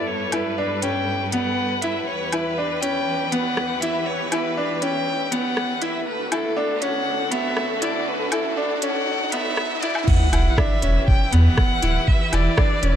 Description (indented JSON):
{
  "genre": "piano and strings electronica",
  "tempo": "120 BPM",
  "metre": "4/4",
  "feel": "straight",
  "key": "E dorian",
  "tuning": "A4 = 442 Hz",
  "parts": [
    { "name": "dark violin", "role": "melody", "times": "0.0-13.0 s", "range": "A4 to G5", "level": "-26 LUFS", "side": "equal", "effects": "low-pass filter, shimmer reverb" },
    { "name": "warm studio string section", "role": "sustained chords", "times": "0.0-13.0 s", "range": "D2 to B4", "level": "-28 LUFS", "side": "left 1 dB", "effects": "sidechain pumping, low-pass filter, shimmer reverb" },
    { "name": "bright grand piano", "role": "riff", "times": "0.0-13.0 s", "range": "B3 to E4", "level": "-25 LUFS", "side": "equal", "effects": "tape echo, shimmer reverb" },
    { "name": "organic electronic drum kit", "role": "drums", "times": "0.3-12.9 s", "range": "crash cymbal, hi-hat, rim click, woodblock", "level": "-27 LUFS", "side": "equal", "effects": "none" },
    { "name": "riser and sub drop", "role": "sound effects", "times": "4.5-12.1 s", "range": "none", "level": "-28 LUFS", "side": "equal", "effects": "none" },
    { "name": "electronic kick drum", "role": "drums", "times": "10.1-12.7 s", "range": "none", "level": "-18 LUFS", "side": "equal", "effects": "none" },
    { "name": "warm sub bass", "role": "bass", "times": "10.3-13.0 s", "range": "D1 to E2", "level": "-17 LUFS", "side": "equal", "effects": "sidechain pumping" }
  ],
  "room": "light reverb",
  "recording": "high-pass filter",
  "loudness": "-19 LUFS",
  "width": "side -10 dB against mid",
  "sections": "0.0-10.1 A section; 10.1-13.0 B section",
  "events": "build-up 0.0-10.1; riser 4.5-10.1; drop 10.1-13.0; impact 10.1-12.1",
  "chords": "0.0 Gadd9; 2.1 Em; 6.1 D; 10.1 Em"
}